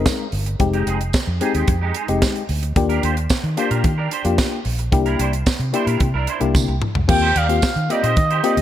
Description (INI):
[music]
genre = early-eighties boogie funk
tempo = 111 BPM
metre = 4/4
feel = straight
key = unclear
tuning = A4 = 441 Hz
[part]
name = mellow FM electric piano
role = accompaniment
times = 0.0-8.6 s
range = Ab3 to Bb4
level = -23 LUFS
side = left 6 dB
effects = chorus
[part]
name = vintage muted fingered electric bass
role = bass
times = 0.0-8.6 s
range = F1 to Eb3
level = -21 LUFS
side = right 1 dB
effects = none
[part]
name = clean electric guitar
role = riff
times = 0.1-8.6 s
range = Ab3 to D5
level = -26 LUFS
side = right 6 dB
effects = ensemble chorus
[part]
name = tight funk drum kit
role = drums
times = 0.1-8.6 s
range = crash cymbal, hi-hat, kick drum, snare drum, toms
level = -21 LUFS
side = right 1 dB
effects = none
[part]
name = tambourine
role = percussion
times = 0.1-7.8 s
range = none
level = -32 LUFS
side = right 8 dB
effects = none
[part]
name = expressive portamento lead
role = melody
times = 7.1-8.6 s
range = Eb5 to G5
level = -20 LUFS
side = right 1 dB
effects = chorus
[sound]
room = light reverb, small room ambience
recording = none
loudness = -17 LUFS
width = side -11 dB against mid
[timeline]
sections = 0.0-7.1 A section; 7.1-8.6 B section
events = drum fill 6.5-7.1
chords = 0.0 Fm9; 2.8 Ebmaj7; 4.9 C9; 7.1 Eb6